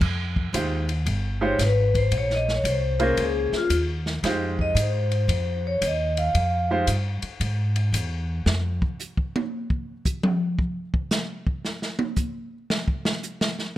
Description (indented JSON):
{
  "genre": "jazz, small-group swing and bop",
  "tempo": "114 BPM",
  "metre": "4/4",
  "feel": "swing 67% on 8ths",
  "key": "F minor",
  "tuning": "A4 = 440 Hz",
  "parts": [
    { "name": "upright bass", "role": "bass", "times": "0.0-8.8 s", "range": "G1 to Ab2", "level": "-24 LUFS", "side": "equal", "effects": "none" },
    { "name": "open jazz drum kit", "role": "drums", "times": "0.0-13.7 s", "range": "crash cymbal, hi-hat, kick drum, ride cymbal, snare drum, toms", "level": "-27 LUFS", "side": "equal", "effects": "none" },
    { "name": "bright upright piano", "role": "accompaniment", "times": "0.5-6.9 s", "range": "Ab3 to C5", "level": "-27 LUFS", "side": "right 2 dB", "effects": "none" },
    { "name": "vibraphone with medium mallets", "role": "melody", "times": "1.4-6.8 s", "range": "F4 to F5", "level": "-25 LUFS", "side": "left 2 dB", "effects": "none" }
  ],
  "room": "light reverb",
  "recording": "none",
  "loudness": "-22 LUFS",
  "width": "side -14 dB against mid",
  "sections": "0.0-13.8 A section",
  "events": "vibraphone solo 0.0-13.8; drum solo 8.5-13.8",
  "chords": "0.0 Fm7; 2.1 Bbm7; 4.2 Fm7; 8.5 N.C.",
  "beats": "| 0.01 0.54 1.07 1.60 | 2.12 2.65 3.18 3.71 | 4.24 4.77 5.30 5.83 | 6.35 6.88 7.41 7.94 | 8.47 9.00 9.53 10.05 | 10.58 11.11 11.64 12.17 | 12.70 13.23"
}